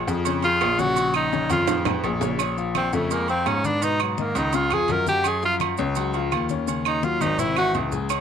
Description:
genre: Afro-Cuban jazz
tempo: 168 BPM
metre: 4/4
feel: straight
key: Bb minor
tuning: A4 = 441 Hz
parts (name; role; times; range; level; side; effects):
- bright grand piano; bass; 0.0-8.2 s; Ab1 to Ab2; -26 LUFS; left 1 dB; none
- warm concert grand piano; accompaniment; 0.1-8.2 s; Cb3 to Db6; -29 LUFS; left 11 dB; none
- maracas; percussion; 0.1-8.2 s; none; -39 LUFS; right 14 dB; none
- agogo bells and timbales; percussion; 0.3-8.2 s; none; -28 LUFS; right 15 dB; none
- congas; percussion; 0.3-8.2 s; none; -33 LUFS; left 7 dB; none
- breathy tenor saxophone; melody; 0.4-7.7 s; Gb3 to Bb4; -23 LUFS; equal; none
- claves; percussion; 0.6-8.2 s; none; -33 LUFS; right 12 dB; none
room: light reverb, small room ambience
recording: 1960s-style stereo with parts hard left and right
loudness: -20 LUFS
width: side -8 dB against mid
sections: 0.0-2.4 A section; 2.4-8.2 A section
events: tenor saxophone solo 0.0-8.2; drum fill 1.3-2.4, 7.0-8.1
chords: 0.0 Bbm7; 3.8 Abm; 4.5 Db; 5.3 Gb5; 6.7 Ebm7; 7.4 Abaug

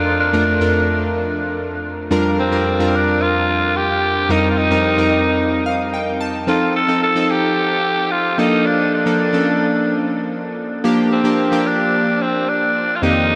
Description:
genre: pop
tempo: 110 BPM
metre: 4/4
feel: straight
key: unclear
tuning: A4 = 440 Hz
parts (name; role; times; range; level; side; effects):
- raspy tenor saxophone; melody; 0.0-13.4 s; C4 to A4; -21 LUFS; equal; diffuse ambient delay
- chorused retro synth keys; accompaniment; 0.0-13.4 s; F2 to A5; -20 LUFS; equal; none
room: wet huge ambient reverb, RT60 8.1 s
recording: dreamy mix soaked in reverb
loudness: -17 LUFS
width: mono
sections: 0.0-13.4 A section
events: synth keys fill 5.4-6.5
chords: 0.0 Bbmaj7/F; 2.1 Gm7/F; 4.3 Cm7/F; 6.5 F7; 8.4 Bbmaj7/F; 10.8 Gm7/F

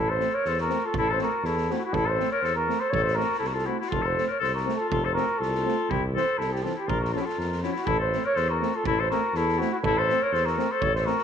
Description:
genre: balkan folk, Balkan brass band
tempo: 121 BPM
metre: 2/4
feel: straight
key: unclear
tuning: A4 = 440 Hz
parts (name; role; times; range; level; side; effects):
- mellow flugelhorn; melody; 0.0-11.2 s; Gb4 to Db5; -27 LUFS; right 2 dB; none
- bright clarinet; second line; 0.0-11.2 s; E4 to Bb4; -28 LUFS; left 9 dB; none
- mellow tuba; bass; 0.0-11.1 s; F1 to F2; -30 LUFS; equal; none
- mellow euphonium; accompaniment; 0.2-11.2 s; E3 to A3; -36 LUFS; right 12 dB; none
- warm trombone; accompaniment; 0.2-11.2 s; C4 to Db4; -35 LUFS; left 8 dB; none
- street-band drum kit; percussion; 0.2-11.2 s; kick drum, snare drum; -36 LUFS; right 5 dB; none
room: moderate echo chamber reverb, RT60 1.3 s, small room reverb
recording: 1960s-style stereo with parts hard left and right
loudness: -23 LUFS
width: side -8 dB against mid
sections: 0.0-7.9 A section; 7.9-11.2 A section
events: none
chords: 0.0 Am; 3.9 F; 5.9 C; 6.9 Bbm; 7.9 Am

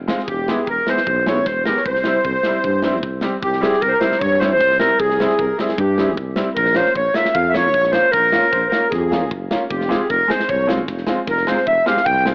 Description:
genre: klezmer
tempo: 153 BPM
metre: 4/4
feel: straight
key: C phrygian dominant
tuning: A4 = 440 Hz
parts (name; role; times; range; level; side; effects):
- mellow tuba; bass; 0.0-12.3 s; E1 to G2; -26 LUFS; equal; none
- bright upright piano; accompaniment; 0.1-12.3 s; G3 to Ab4; -26 LUFS; equal; cassette tape
- tight metal drum kit; drums; 0.1-12.3 s; kick drum, snare drum; -29 LUFS; equal; cassette tape
- accordion; second line; 0.2-12.2 s; F4 to G5; -26 LUFS; equal; light tremolo tuning, cassette tape
- warm clarinet; melody; 0.3-12.3 s; G4 to G5; -20 LUFS; equal; none
room: moderate spring reverb, RT60 1.9 s, studio reverb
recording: home recording on cassette, AM radio sound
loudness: -18 LUFS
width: mono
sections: 0.0-3.4 A section; 3.4-12.3 A section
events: none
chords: 0.3 E; 1.8 C; 6.6 Bbm; 9.7 Fm

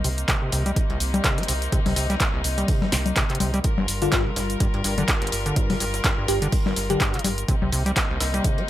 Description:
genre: acid house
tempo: 125 BPM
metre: 4/4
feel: swing 56% on 16ths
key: unclear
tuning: A4 = 441 Hz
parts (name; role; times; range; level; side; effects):
- rich chamber string section; sustained chords; 0.0-8.7 s; C3 to Bb4; -30 LUFS; left 2 dB; vintage 12-bit sampler grit, sidechain pumping
- deep acid bass; riff; 0.0-8.6 s; G1 to G3; -28 LUFS; equal; cassette tape, dub echo
- round analog bass; bass; 0.0-8.4 s; G1 to C2; -27 LUFS; right 1 dB; sidechain pumping
- breakbeat sampler-style drum kit; drums; 0.0-8.7 s; hi-hat, snare drum; -35 LUFS; right 1 dB; none
- punchy analog drum machine; drums; 0.0-8.6 s; cabasa, congas, handclaps, hi-hat, snare drum; -25 LUFS; left 2 dB; none
- electronic kick drum; drums; 0.3-8.6 s; none; -24 LUFS; right 1 dB; none
- bell-like FM electric piano; melody; 4.0-7.2 s; F4 to G4; -28 LUFS; left 2 dB; chorus, phaser, digital delay
room: light reverb, digital ambience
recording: none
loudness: -20 LUFS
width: side -13 dB against mid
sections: 0.0-8.7 A section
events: none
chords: 0.0 Cm7; 3.6 Gm7; 7.5 Cm7

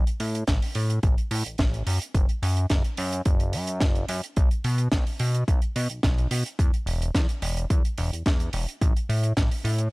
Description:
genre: nu-disco, nu disco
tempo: 108 BPM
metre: 4/4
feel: straight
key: unclear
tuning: A4 = 440 Hz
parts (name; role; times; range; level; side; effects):
- chorused synth bass; bass; 0.0-9.9 s; E1 to B2; -25 LUFS; equal; none
- tight funk drum kit; drums; 0.1-9.9 s; hi-hat, snare drum; -31 LUFS; right 1 dB; none
- electronic kick drum; drums; 0.5-9.5 s; none; -23 LUFS; equal; none
room: little or no reverb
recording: dry, gritty hardware recording, transformer saturation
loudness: -22 LUFS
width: side -25 dB against mid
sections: 0.0-9.9 A section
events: none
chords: none

